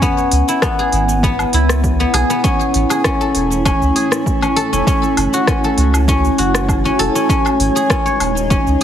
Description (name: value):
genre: organic downtempo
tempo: 99 BPM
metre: 4/4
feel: swing 53% on 16ths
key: C# minor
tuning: A4 = 438 Hz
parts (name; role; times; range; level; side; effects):
- granular cloud pad; sustained chords; 0.9-8.8 s; G#3 to G#5; -21 LUFS; right 1 dB; built-in reverb, sidechain pumping
- guzheng; arpeggios; 0.0-8.8 s; B3 to C#5; -16 LUFS; left 1 dB; digital delay
- deep house drum kit; drums; 0.0-8.8 s; hi-hat, rim click, shaker, woodblock; -21 LUFS; equal; none
- electronic kick drum; drums; 0.0-8.6 s; none; -18 LUFS; equal; none
- warm sub bass; bass; 0.3-8.8 s; D#1 to C#2; -17 LUFS; equal; sidechain pumping
room: light reverb, digital ambience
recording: heavily compressed radio sound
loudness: -13 LUFS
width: side -10 dB against mid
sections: 0.0-8.8 A section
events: none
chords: 0.0 C#m7; 2.4 Amaj7; 4.9 F#m7; 7.3 G#sus4